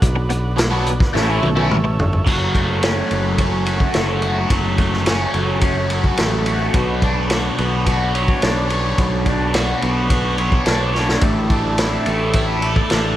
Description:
psychedelic rock; 107 BPM; 4/4; straight; B minor; A4 = 439 Hz
combo organ; sustained chords; 0.0-13.2 s; A3 to E5; -28 LUFS; right 2 dB
picked electric bass; bass; 0.0-13.2 s; F#1 to B1; -22 LUFS; equal
vintage drum kit; drums; 0.0-13.0 s; crash cymbal, hi-hat, kick drum, ride cymbal, snare drum, toms; -20 LUFS; equal
cranked stack guitar; riff; 0.2-13.2 s; A2 to C#5; -20 LUFS; equal; overdrive, phaser
light reverb, studio ambience; echo-heavy mix; -15 LUFS; side -13 dB against mid
0.0-2.3 A section; 2.3-13.2 B section
drum fill 1.1-2.3, 10.9
0.0 Bm; 1.1 A; 2.3 F#m; 6.7 Bmadd9; 11.2 Asus4
| 0.03 0.58 1.14 1.70 | 2.26 2.82 3.38 3.94 | 4.50 5.07 5.62 6.18 | 6.75 7.30 7.86 8.42 | 8.98 9.54 10.10 10.66 | 11.22 11.78 12.35 12.90

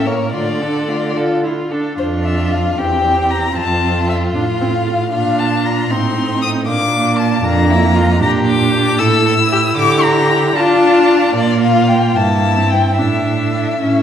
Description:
quick classical-period movement for string quartet; 72-78 BPM (dotted quarters); 6/8; straight; D minor from 8.2 s; A4 = 442 Hz
warm violin; melody; 0.0-14.0 s; C5 to E6; -18 LUFS; left 4 dB
warm violin; second line; 0.0-14.0 s; D4 to Bb4; -20 LUFS; left 2 dB
rich viola; accompaniment; 0.0-14.0 s; A3 to F4; -19 LUFS; right 1 dB
warm cello; bass; 0.0-14.0 s; E2 to D4; -17 LUFS; right 3 dB
wet recital hall reverb, RT60 1.6 s; heard from further back in the room; -12 LUFS; side -9 dB against mid
0.0-2.0 A section; 2.0-14.0 B section
0.3 Dm; 2.0 Dmadd9/F; 2.8 C/E; 3.6 F; 5.1 Bb; 5.9 Adim; 6.7 Bb; 8.2 Gm/Bb; 9.0 A5; 9.8 Dm; 11.4 Bb5; 12.2 Edim/G; 13.0 Asus4
| 0.34 1.17 | 1.99 2.79 | 3.57 4.35 | 5.13 5.90 | 6.67 7.45 | 8.22 9.00 | 9.78 10.57 | 11.35 12.16 | 12.98 13.80

